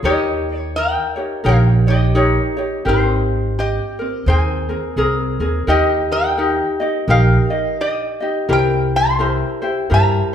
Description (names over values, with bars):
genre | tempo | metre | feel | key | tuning
Hawaiian | 85 BPM | 4/4 | swing 61% on 8ths | Ab major, Eb major from 5.7 s | A4 = 441 Hz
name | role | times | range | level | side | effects
ukulele | accompaniment | 0.0-10.3 s | C4 to Eb5 | -19 LUFS | left 1 dB | none
upright bass | bass | 0.0-10.2 s | Ab1 to G2 | -18 LUFS | right 1 dB | none
metal-body resonator slide guitar | melody | 0.1-10.3 s | Eb4 to C6 | -21 LUFS | equal | none
room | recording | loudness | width
wet large studio reverb, RT60 1.4 s | band playing live in one room | -15 LUFS | side -9 dB against mid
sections
0.0-5.7 A section; 5.7-10.3 B section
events
none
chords
0.0 Eb7; 2.9 Abmaj9; 5.7 Eb; 8.5 C7